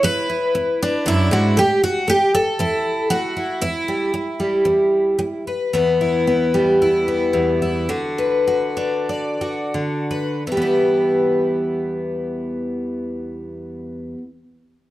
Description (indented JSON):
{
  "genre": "folk, solo fingerstyle acoustic guitar",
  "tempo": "82-119 BPM",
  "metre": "4/4",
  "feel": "rubato",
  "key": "E minor",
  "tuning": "A4 = 440 Hz",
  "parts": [
    { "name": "picked twelve-string acoustic guitar", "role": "solo", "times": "0.0-14.3 s", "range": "E2 to D5", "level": "-17 LUFS", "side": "equal", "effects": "none" }
  ],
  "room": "light reverb",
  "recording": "close, detailed microphones",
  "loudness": "-17 LUFS",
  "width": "side -15 dB against mid",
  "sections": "0.0-5.7 A section; 5.7-10.5 B section; 10.5-14.9 C section",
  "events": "slowing down 5.7-10.5",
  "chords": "0.0 E7; 1.6 A5; 3.6 Em; 7.9 Bm/D; 10.5 Em"
}